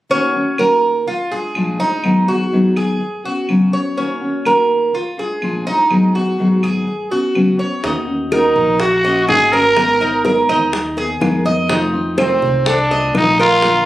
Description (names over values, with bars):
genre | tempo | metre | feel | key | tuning
latin, Cuban son and guajira | 124 BPM | 4/4 | straight | Eb minor | A4 = 444 Hz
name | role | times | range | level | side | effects
nylon-string guitar | accompaniment | 0.1-13.9 s | Ab2 to Bb4 | -18 LUFS | left 1 dB | none
Cuban tres | arpeggios | 0.1-13.9 s | Db4 to Eb5 | -17 LUFS | right 2 dB | none
claves | percussion | 0.6-13.9 s | none | -28 LUFS | right 1 dB | none
upright bass | bass | 7.8-13.9 s | Ab1 to F2 | -23 LUFS | left 1 dB | none
bongos | percussion | 7.8-13.9 s | none | -24 LUFS | left 2 dB | none
growling trumpet | melody | 8.3-13.9 s | C4 to Bb4 | -14 LUFS | equal | none
room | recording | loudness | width
moderate small room ambience, RT60 0.5 s | recorded on a phone in the room, studio reverb, compression | -13 LUFS | side -15 dB against mid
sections
0.1-7.8 A section; 7.8-13.9 B section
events
none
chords
0.1 Ebm7; 1.1 Bb7; 2.0 Abm7; 3.0 Db7sus4; 4.0 Ebm7; 4.9 Bb7; 5.9 Abm7; 6.9 Db7sus4; 7.8 Ebm7; 9.8 Abmadd9; 11.7 F7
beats
| 0.10 0.58 1.07 1.55 | 2.04 2.52 3.00 3.49 | 3.97 4.46 4.94 5.42 | 5.91 6.39 6.87 7.35 | 7.84 8.32 8.80 9.29 | 9.77 10.25 10.73 11.22 | 11.70 12.18 12.67 13.15 | 13.63